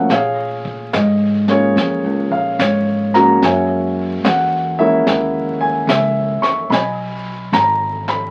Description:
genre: jazz.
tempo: 73 BPM.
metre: 4/4.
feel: swing 66% on 8ths.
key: F# major.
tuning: A4 = 440 Hz.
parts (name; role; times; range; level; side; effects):
warm grand piano; accompaniment; 0.0-8.3 s; E#3 to C#6; -18 LUFS; equal; none.
upright bass; bass; 0.1-8.3 s; G#1 to A#2; -23 LUFS; equal; none.
vintage brush drum kit; drums; 0.1-8.3 s; brushed snare drum, hi-hat, kick drum, snare drum; -24 LUFS; equal; none.
room: wet studio ambience, RT60 0.5 s.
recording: very old 78 rpm record, vinyl crackle.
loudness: -16 LUFS.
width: mono.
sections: 0.0-8.3 A section.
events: none.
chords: 0.1 A#m7; 3.4 F#7; 6.7 B6.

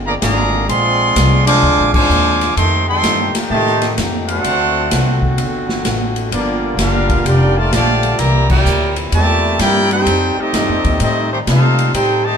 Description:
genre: jazz, big band swing.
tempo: 128 BPM.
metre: 4/4.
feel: swing 66% on 8ths.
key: F major.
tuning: A4 = 441 Hz.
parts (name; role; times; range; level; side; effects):
bright trombone section; sustained chords; 0.0-12.4 s; Bb2 to G4; -24 LUFS; left 1 dB; none.
upright bass; bass; 0.0-12.4 s; F1 to C3; -17 LUFS; equal; none.
clear trumpet section; melody; 0.1-12.4 s; A3 to D6; -16 LUFS; equal; none.
clear trombone section; second line; 0.1-12.4 s; Bb2 to G4; -20 LUFS; right 1 dB; none.
swinging big-band drum kit; drums; 0.2-12.1 s; crash cymbal, hi-hat, kick drum, ride cymbal, snare drum; -20 LUFS; equal; none.
room: moderate studio reverb, RT60 0.8 s.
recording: band playing live in one room.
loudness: -12 LUFS.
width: side -7 dB against mid.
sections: 0.0-12.4 A section.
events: band accent 1.9, 8.4.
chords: 0.0 Bb9; 2.6 F9; 4.4 D7; 6.3 Gm7; 8.2 C13; 10.1 F9.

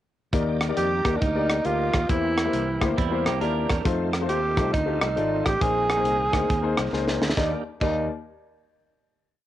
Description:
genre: uptempo gospel.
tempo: 136 BPM.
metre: 4/4.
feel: swing 64% on 8ths.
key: Eb major.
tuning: A4 = 441 Hz.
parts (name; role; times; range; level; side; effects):
warm grand piano; accompaniment; 0.3-8.1 s; Eb2 to Eb5; -28 LUFS; left 7 dB; cassette tape.
bright tonewheel organ; sustained chords; 0.3-7.6 s; Eb3 to D5; -34 LUFS; right 8 dB; slow rotary speaker, chorus vibrato, cassette tape.
fingered electric bass; bass; 0.3-8.1 s; Ab1 to F2; -29 LUFS; equal; none.
tight funk drum kit; drums; 0.3-7.9 s; crash cymbal, hi-hat, kick drum, rim click, snare drum; -26 LUFS; equal; none.
breathy tenor saxophone; melody; 0.8-8.1 s; D4 to Ab4; -25 LUFS; right 2 dB; cassette tape.
clean electric guitar; second line; 3.0-3.8 s; G3 to Bb4; -30 LUFS; right 9 dB; cassette tape.
room: light reverb.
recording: home recording on cassette.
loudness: -21 LUFS.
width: side -13 dB against mid.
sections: 0.3-7.4 breakdown; 7.4-9.1 final chord.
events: drum fill 6.9-7.4.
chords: 0.3 Ebmaj7; 2.1 C7; 3.9 F7; 5.6 Bb9sus4; 7.4 Ebmaj7.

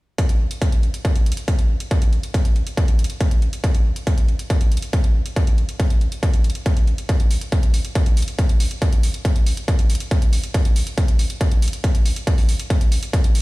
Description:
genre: trance.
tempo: 139 BPM.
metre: 4/4.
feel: straight.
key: none.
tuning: none.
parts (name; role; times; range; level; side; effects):
electronic hi-hat; drums; 0.2-13.4 s; none; -31 LUFS; right 2 dB; overdrive, sidechain pumping on hats, studio reverb.
electronic kick drum; drums; 0.2-13.2 s; none; -17 LUFS; equal; distortion, overdrive, studio reverb.
room: little or no reverb.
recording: played on a big sound system in a bare room, stone room reverb.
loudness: -17 LUFS.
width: side -21 dB against mid.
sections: 0.2-13.4 A section.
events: none.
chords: none.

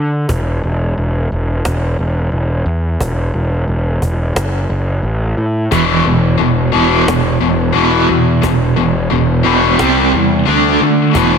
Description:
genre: hard rock.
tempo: 88 BPM.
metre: 4/4.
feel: straight.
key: E minor.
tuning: A4 = 441 Hz.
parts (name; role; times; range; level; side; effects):
fuzz picked electric bass; bass; 0.0-11.4 s; E1 to D3; -16 LUFS; equal; overdrive.
cajon; drums; 0.3-11.3 s; none; -23 LUFS; equal; none.
crunchy overdriven guitar; riff; 5.7-11.4 s; E2 to D4; -14 LUFS; right 8 dB; tremolo.
tight distorted guitar; riff; 5.7-11.4 s; E2 to D4; -14 LUFS; left 10 dB; distortion.
room: moderate concert hall reverb, RT60 2.3 s.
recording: big arena sound.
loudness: -12 LUFS.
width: side -6 dB against mid.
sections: 0.0-11.4 A section.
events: none.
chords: 0.0 N.C.; 5.7 E5; 9.8 C5; 10.5 D5.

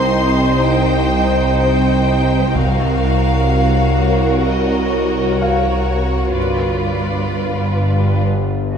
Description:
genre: cinematic, suspense film score.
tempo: 63 BPM.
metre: 4/4.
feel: straight.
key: unclear.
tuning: A4 = 440 Hz.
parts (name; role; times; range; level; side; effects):
rich chamber violin section; melody; 0.0-8.3 s; C#5 to C6; -24 LUFS; equal; none.
warm symphonic violin section; second line; 0.0-8.2 s; Eb4 to C5; -21 LUFS; equal; none.
ethereal airy pad; sustained chords; 0.0-8.3 s; F#4 to G5; -23 LUFS; left 1 dB; ensemble chorus, built-in reverb.
rich symphonic double bass section; bass; 0.0-8.2 s; G1 to C2; -21 LUFS; right 2 dB; none.
warm symphonic cello section; bass; 0.0-8.8 s; C2 to F#4; -21 LUFS; right 2 dB; none.
analog drone; drone; 0.0-8.8 s; G1 to C2; -20 LUFS; left 1 dB; chorus.
rich symphonic violin section; texture; 0.0-2.0 s; C6 to G6; -32 LUFS; left 2 dB; none.
taiko ensemble; drums; 2.6-4.4 s; none; -27 LUFS; left 1 dB; none.
warm grand piano; texture; 5.4-8.8 s; F5; -26 LUFS; left 3 dB; none.
room: wet scoring stage reverb, RT60 1.9 s.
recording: heard from further back in the room.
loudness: -13 LUFS.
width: side -7 dB against mid.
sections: 0.0-8.8 A section.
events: break 8.3-8.8.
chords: 0.0 Cm; 2.6 F#/C; 6.4 G7.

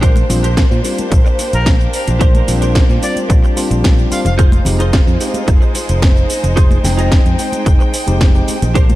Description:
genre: nu-disco, nu disco.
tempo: 110 BPM.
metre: 4/4.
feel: straight.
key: unclear.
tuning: A4 = 441 Hz.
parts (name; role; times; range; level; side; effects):
dark studio violin section; sustained chords; 0.0-9.0 s; Ab3 to G5; -22 LUFS; equal; vintage 12-bit sampler grit, sidechain pumping.
direct-recorded clean electric guitar; riff; 0.0-9.0 s; D4 to Eb5; -24 LUFS; right 3 dB; ensemble chorus, ping-pong delay.
modern bright fingered electric bass; bass; 0.0-9.0 s; F1 to Bb2; -16 LUFS; equal; none.
electronic kick drum; drums; 0.0-8.9 s; none; -11 LUFS; equal; none.
house drum kit; drums; 0.0-9.0 s; cabasa, hi-hat, snare drum; -22 LUFS; equal; none.
congas and bongos; percussion; 0.2-9.0 s; none; -26 LUFS; left 2 dB; none.
mellow tine electric piano; accompaniment; 0.3-8.6 s; G3 to G5; -22 LUFS; left 2 dB; ping-pong delay.
bright reedy jazz flute; melody; 1.5-4.3 s; Bb4 to F5; -25 LUFS; left 1 dB; ping-pong delay.
room: light reverb, digital ambience.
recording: none.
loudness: -10 LUFS.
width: side -16 dB against mid.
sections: 0.0-9.0 A section.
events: none.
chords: 0.0 Bb69; 4.4 Fm7.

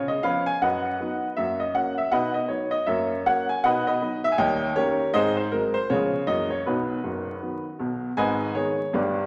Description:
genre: jazz, stride piano.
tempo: 159 BPM.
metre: 4/4.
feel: swing 60% on 8ths.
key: B major.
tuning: A4 = 440 Hz.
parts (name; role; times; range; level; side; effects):
clear upright piano; solo; 0.0-9.3 s; F#1 to G#5; -25 LUFS; equal; none.
room: wet large studio reverb, RT60 1.4 s.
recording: vinyl crackle.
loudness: -25 LUFS.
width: mono.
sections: 0.0-8.2 A section; 8.2-9.3 B section.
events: none.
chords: 0.0 C#7; 0.6 B/F#; 1.4 F#; 2.1 B; 2.9 F#7; 3.6 B; 4.4 D#7; 5.2 G#7; 5.9 C#7; 6.3 F#9; 6.7 B; 8.2 G#m.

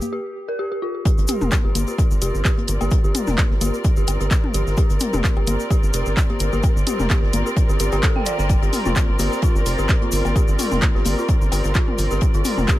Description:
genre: minimal techno.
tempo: 129 BPM.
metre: 4/4.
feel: swing 55% on 16ths.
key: G minor.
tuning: A4 = 443 Hz.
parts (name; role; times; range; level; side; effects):
egg shaker; percussion; 0.0-12.8 s; none; -33 LUFS; left 4 dB; none.
electronic congas, toms and cowbell; percussion; 0.0-12.8 s; none; -26 LUFS; left 3 dB; overdrive, digital delay.
dark detuned synth bell; riff; 0.1-12.7 s; F4 to G5; -28 LUFS; equal; chorus, sidechain pumping, ping-pong delay.
electronic kick drum; drums; 1.1-12.8 s; none; -18 LUFS; equal; none.
open jazz drum kit; drums; 1.1-12.8 s; hi-hat, snare drum; -37 LUFS; left 4 dB; none.
muted studio string section; texture; 1.1-12.8 s; C4 to D5; -27 LUFS; equal; sidechain pumping.
rubbery square bass; bass; 1.2-12.7 s; F1 to G1; -22 LUFS; equal; sidechain pumping.
punchy analog drum machine; drums; 1.3-12.8 s; handclaps, hi-hat; -25 LUFS; right 1 dB; none.
room: little or no reverb.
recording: none.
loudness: -17 LUFS.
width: side -15 dB against mid.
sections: 0.0-1.1 A section; 1.1-12.8 B section.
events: break 0.1-1.1; drop 1.1-12.8.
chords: 0.0 N.C.; 1.1 Gm.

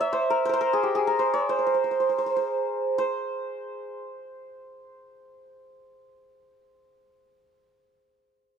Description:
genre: Persian modal ensemble.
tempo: free time.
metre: none.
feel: none.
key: C dastgah homayun.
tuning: A4 = 439 Hz.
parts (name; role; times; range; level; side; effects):
santur; solo; 0.0-7.7 s; G4 to E5; -24 LUFS; right 1 dB; none.
room: light reverb.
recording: dark, warm production.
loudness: -23 LUFS.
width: side -7 dB against mid.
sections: 0.0-3.0 A section; 3.0-6.6 B section.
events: slowing down 0.0-3.0.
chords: none.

